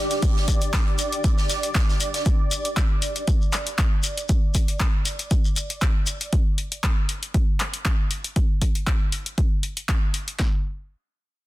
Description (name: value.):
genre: acid house.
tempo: 118 BPM.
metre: 4/4.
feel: swing 54% on 16ths.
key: unclear.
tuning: A4 = 440 Hz.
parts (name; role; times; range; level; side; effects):
warm analog pad; sustained chords; 0.0-6.3 s; D5; -31 LUFS; right 2 dB; chorus, sidechain pumping.
granular cloud pad; texture; 0.0-2.3 s; D4 to D6; -34 LUFS; equal; built-in reverb, sidechain pumping.
loose indie drum kit; drums; 0.1-2.3 s; hi-hat, snare drum; -34 LUFS; right 2 dB; sidechain pumping on hats, high-pass filter on hats, high-pass filter on snare, high-pass filter on room.
punchy analog drum machine; drums; 0.1-10.4 s; handclaps, hi-hat; -28 LUFS; left 1 dB; overdrive.
shekere; percussion; 0.1-6.3 s; none; -32 LUFS; left 3 dB; none.
punchy analog drum machine; drums; 0.2-10.5 s; handclaps, kick drum, snare drum; -21 LUFS; equal; overdrive.
room: studio reverb.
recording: dense, heavily limited modern master.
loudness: -20 LUFS.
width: side -17 dB against mid.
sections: 0.0-10.4 A section; 10.4-11.5 B section.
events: none.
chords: 0.0 G5; 10.4 N.C..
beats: | 0.23 0.73 1.24 1.75 | 2.26 2.77 3.27 3.78 | 4.29 4.80 5.31 5.82 | 6.33 6.83 7.34 7.85 | 8.36 8.87 9.38 9.89 | 10.39.